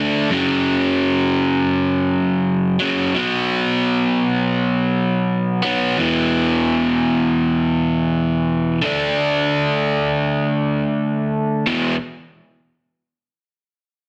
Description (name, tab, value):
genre	rock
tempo	85 BPM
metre	4/4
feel	straight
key	unclear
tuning	A4 = 438 Hz
part	overdriven electric guitar	solo	0.0-12.0 s	E2 to D4	-19 LUFS	equal	none
room	moderate large studio reverb, RT60 1.1 s, digital ambience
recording	dense, heavily limited modern master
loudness	-19 LUFS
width	mono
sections	0.0-6.0 A section; 6.0-11.7 B section; 11.7-14.1 C section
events	none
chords	0.3 F#5; 3.1 B5; 6.0 E5; 8.8 D5; 11.7 E5